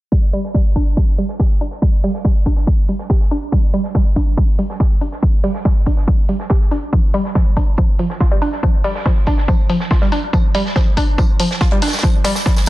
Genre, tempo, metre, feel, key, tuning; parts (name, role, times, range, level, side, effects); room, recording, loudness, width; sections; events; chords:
driving peak-time techno; 141 BPM; 4/4; straight; A4 = 443 Hz
woody wave-folded pluck; riff; 0.1-12.5 s; F3 to G4; -21 LUFS; right 1 dB; chorus, overdrive, sidechain pumping, dub echo
compact cocktail drum kit; drums; 0.1-12.7 s; hi-hat, snare drum, tambourine; -28 LUFS; right 2 dB; sidechain pumping on hats, high-pass filter on hats, high-pass filter on snare, sidechain pumping on perc, high-pass filter on perc, high-pass filter on room
electronic kick drum; drums; 0.1-12.5 s; -14 LUFS; equal; overdrive
electronic hi-hat; drums; 0.3-12.3 s; -27 LUFS; left 3 dB; sidechain pumping on hats
studio reverb; dense, heavily limited modern master, low-pass filter; -14 LUFS; side -17 dB against mid
0.1-12.7 A section
filter sweep on synth arpeggio sound 0.1-12.7; filter sweep 0.1-12.7